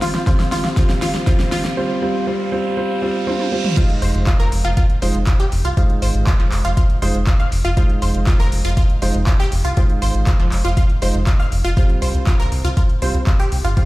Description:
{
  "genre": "progressive house",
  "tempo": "120 BPM",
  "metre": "4/4",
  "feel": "straight",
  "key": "F minor",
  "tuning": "A4 = 440 Hz",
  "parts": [
    { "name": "wide unison pluck", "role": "arpeggios", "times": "0.0-13.8 s", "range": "F3 to F6", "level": "-25 LUFS", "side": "equal", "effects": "sidechain pumping, digital delay" },
    { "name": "dark concert grand piano", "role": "stabs", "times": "0.0-13.9 s", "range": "G3 to C5", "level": "-23 LUFS", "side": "right 2 dB", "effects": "sidechain pumping, digital delay" },
    { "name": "deep house drum kit", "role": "drums", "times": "0.0-13.9 s", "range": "crash cymbal, handclaps, hi-hat, snare drum, toms", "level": "-26 LUFS", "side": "equal", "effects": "overdrive, sidechain pumping on hats, sidechain pumping on toms, sidechain pumping on cymbals" },
    { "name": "riser and reverse cymbal", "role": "sound effects", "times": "0.4-3.8 s", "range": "none", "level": "-31 LUFS", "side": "right 2 dB", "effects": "none" },
    { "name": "electronic kick drum", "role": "drums", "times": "0.3-13.9 s", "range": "none", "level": "-15 LUFS", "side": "equal", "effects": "overdrive" },
    { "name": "round analog bass", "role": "bass", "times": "4.0-13.7 s", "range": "F1 to C2", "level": "-18 LUFS", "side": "equal", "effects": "sidechain pumping" }
  ],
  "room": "light reverb",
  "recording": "played on a big sound system in a bare room, large studio reverb",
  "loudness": "-15 LUFS",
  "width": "side -18 dB against mid",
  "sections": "0.0-3.8 A section; 3.8-13.9 B section",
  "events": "build-up 0.0-3.8; drum fill 0.0-1.8, 3.3-3.8; filter sweep on synth pluck 0.0-3.8; riser 0.4-3.8; break 1.8-3.8; reverse cymbal 2.8-3.8; drop 3.8-13.9",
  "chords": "0.0 G7sus4; 3.8 Fm7; 11.8 Csus4"
}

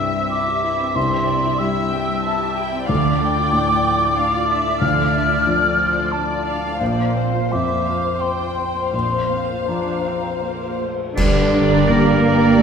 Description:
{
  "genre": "cinematic, emotional film score for orchestra",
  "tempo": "79-94 BPM",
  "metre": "3/4",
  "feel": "rubato",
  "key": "D minor",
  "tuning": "A4 = 440 Hz",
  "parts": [
    { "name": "muted symphonic violin section", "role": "melody", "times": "0.0-12.6 s", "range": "C5 to E5", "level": "-26 LUFS", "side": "left 4 dB", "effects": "none" },
    { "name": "mellow hollow silver concert flute", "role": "second line", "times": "0.0-10.4 s", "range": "F5 to F6", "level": "-21 LUFS", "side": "equal", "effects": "none" },
    { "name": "muted symphonic violin section", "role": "second line", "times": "0.0-12.6 s", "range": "Bb4 to A5", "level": "-29 LUFS", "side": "left 2 dB", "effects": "none" },
    { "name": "felt-muted upright piano", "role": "accompaniment", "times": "0.0-12.6 s", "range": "Bb1 to G3", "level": "-23 LUFS", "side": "left 2 dB", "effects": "none" },
    { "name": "muted symphonic viola section", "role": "accompaniment", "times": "0.0-12.6 s", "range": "F3 to G4", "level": "-29 LUFS", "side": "right 2 dB", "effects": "none" },
    { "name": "muted symphonic cello section", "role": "bass", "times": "0.9-12.6 s", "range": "Bb2 to Bb3", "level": "-21 LUFS", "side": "right 3 dB", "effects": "none" },
    { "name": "cymbal swell, clash cymbals and concert bass drum", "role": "percussion", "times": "6.8-12.6 s", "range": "none", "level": "-26 LUFS", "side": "right 1 dB", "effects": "none" },
    { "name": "clear oboe", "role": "second line", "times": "11.2-12.6 s", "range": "D4 to Bb4", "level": "-24 LUFS", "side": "right 2 dB", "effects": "none" },
    { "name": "dark French horn section", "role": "sustained chords", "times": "11.2-12.6 s", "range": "G4 to D5", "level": "-22 LUFS", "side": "right 2 dB", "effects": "none" },
    { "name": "muted symphonic double bass section", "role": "bass", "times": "11.2-12.6 s", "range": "G2", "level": "-24 LUFS", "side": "right 5 dB", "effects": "none" }
  ],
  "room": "wet scoring stage reverb, RT60 2.0 s",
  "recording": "minimal, uncompressed stereo recording",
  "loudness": "-16 LUFS",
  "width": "side -6 dB against mid",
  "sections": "0.0-11.2 A section; 11.2-12.6 A section",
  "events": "band accent 11.2-11.9",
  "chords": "0.0 C; 2.9 Dm; 6.8 Bbsus2; 11.2 Gm"
}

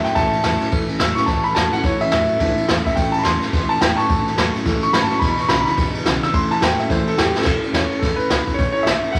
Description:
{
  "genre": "rockabilly",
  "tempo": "214 BPM",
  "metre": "4/4",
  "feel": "swing 61% on 8ths",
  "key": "A major",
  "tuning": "A4 = 441 Hz",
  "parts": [
    { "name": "warm upright piano", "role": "melody", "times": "0.0-9.2 s", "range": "G4 to E6", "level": "-23 LUFS", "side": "equal", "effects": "none" },
    { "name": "picked steel-string acoustic guitar", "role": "accompaniment", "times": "0.0-9.2 s", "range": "E2 to E4", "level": "-28 LUFS", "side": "equal", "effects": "none" },
    { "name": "clean electric guitar", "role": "riff", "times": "0.0-7.4 s", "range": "E2 to F#3", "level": "-28 LUFS", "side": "equal", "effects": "spring reverb" },
    { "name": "upright bass", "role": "bass", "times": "0.0-9.2 s", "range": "E1 to E2", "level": "-31 LUFS", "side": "equal", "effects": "none" },
    { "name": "jazz brush drum kit", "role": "drums", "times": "0.0-9.2 s", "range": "crash cymbal, kick drum, ride cymbal, snare drum", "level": "-22 LUFS", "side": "equal", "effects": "none" }
  ],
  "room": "wet large studio reverb, RT60 1.2 s",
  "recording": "vinyl crackle",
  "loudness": "-18 LUFS",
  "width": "mono",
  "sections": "0.0-7.5 A section; 7.5-9.2 B section",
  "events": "upright piano solo 0.0-7.5; drum fill 7.3",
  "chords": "0.0 A; 5.2 E7; 6.3 A"
}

